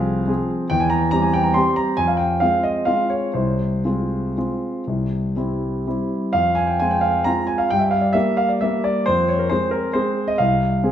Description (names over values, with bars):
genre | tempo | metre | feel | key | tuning
classical, piano waltz | 115-147 BPM | 3/4 | rubato | F minor | A4 = 439 Hz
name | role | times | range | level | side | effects
warm concert grand piano | solo | 0.0-10.9 s | C2 to C6 | -18 LUFS | equal | none
room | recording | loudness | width
wet recital hall reverb, RT60 1.3 s | minimal, uncompressed stereo recording | -18 LUFS | side -10 dB against mid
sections
0.0-10.9 A section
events
none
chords
0.0 Fm; 0.7 C/E; 2.0 Fm; 3.4 Fm/C; 4.9 C; 6.3 Fm; 7.7 Gm6; 9.1 Fm